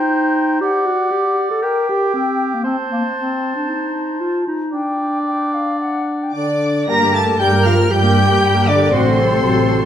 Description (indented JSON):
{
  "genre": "quick classical-period movement for symphony orchestra",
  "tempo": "115 BPM",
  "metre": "4/4",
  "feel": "uneven beats, rubato",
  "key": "G minor",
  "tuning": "A4 = 440 Hz",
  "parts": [
    { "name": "clear oboe", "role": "second line", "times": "0.0-6.6 s", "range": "G4 to D5", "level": "-23 LUFS", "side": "right 2 dB", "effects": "none" },
    { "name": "mellow clarinet", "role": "second line", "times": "0.0-9.9 s", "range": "Bb3 to Bb4", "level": "-20 LUFS", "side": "equal", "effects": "none" },
    { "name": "mellow concert flute", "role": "second line", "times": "0.0-9.9 s", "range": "C5 to Bb5", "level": "-22 LUFS", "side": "left 3 dB", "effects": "none" },
    { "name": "rich chamber violin section", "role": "melody", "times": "6.3-9.9 s", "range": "C6 to Bb6", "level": "-22 LUFS", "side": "equal", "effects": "none" },
    { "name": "rich chamber violin section", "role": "second line", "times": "6.3-9.9 s", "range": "C5 to Bb5", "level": "-24 LUFS", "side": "left 2 dB", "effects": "none" },
    { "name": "dark French horn section", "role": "sustained chords", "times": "6.3-9.9 s", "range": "C3 to Bb3", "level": "-21 LUFS", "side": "left 3 dB", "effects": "none" },
    { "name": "rich chamber viola section", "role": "accompaniment", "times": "6.9-9.9 s", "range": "F#3 to Bb4", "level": "-22 LUFS", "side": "right 1 dB", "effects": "none" },
    { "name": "clear chamber cello section", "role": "bass", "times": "6.9-9.9 s", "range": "F#4 to Bb4", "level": "-22 LUFS", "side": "right 1 dB", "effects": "none" },
    { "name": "warm chamber double bass section", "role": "bass", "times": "6.9-9.9 s", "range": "A1 to G2", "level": "-18 LUFS", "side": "right 3 dB", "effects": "none" }
  ],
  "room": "wet recital hall reverb, RT60 1.6 s",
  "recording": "none",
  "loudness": "-14 LUFS",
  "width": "side -10 dB against mid",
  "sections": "0.0-6.9 A section; 6.9-9.9 B section",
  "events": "none",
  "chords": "0.0 Cm; 0.6 D; 1.6 N.C.; 2.7 Adim; 4.7 G5/D; 5.8 D; 6.9 Gm; 8.9 F#dim/A",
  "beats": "0.11 | 0.61 1.12 1.63 2.14 | 2.65 3.16 3.67 4.20 | 4.73 5.27 5.81 6.34 | 6.88 7.40 7.91 8.42 | 8.93 9.43"
}